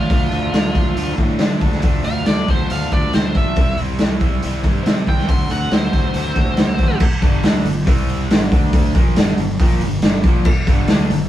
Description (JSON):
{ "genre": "blues rock power trio and southern rock", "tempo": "139 BPM", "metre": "4/4", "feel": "straight", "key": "G minor from 7.0 s", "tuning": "A4 = 441 Hz", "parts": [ { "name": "biting lead guitar", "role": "melody", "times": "0.0-7.0 s", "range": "F4 to C6", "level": "-24 LUFS", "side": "equal", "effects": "overdrive" }, { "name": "cranked stack guitar", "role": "riff", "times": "0.0-11.3 s", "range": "G2 to F#4", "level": "-23 LUFS", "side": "equal", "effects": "overdrive" }, { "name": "fuzz fingered electric bass", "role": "bass", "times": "0.0-11.3 s", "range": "G1 to D3", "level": "-23 LUFS", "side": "equal", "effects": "overdrive" }, { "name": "raw garage drum kit", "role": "drums", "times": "0.1-11.2 s", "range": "crash cymbal, hi-hat, kick drum, snare drum", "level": "-16 LUFS", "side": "equal", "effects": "none" } ], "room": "light reverb", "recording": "band playing live in one room", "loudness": "-14 LUFS", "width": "side -12 dB against mid", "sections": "0.0-7.0 A section; 7.0-11.3 B section", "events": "none", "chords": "0.1 Dm; 3.6 C; 5.3 D7; 7.0 G5; 7.9 C5; 8.3 G5; 8.5 D5; 8.9 Gm" }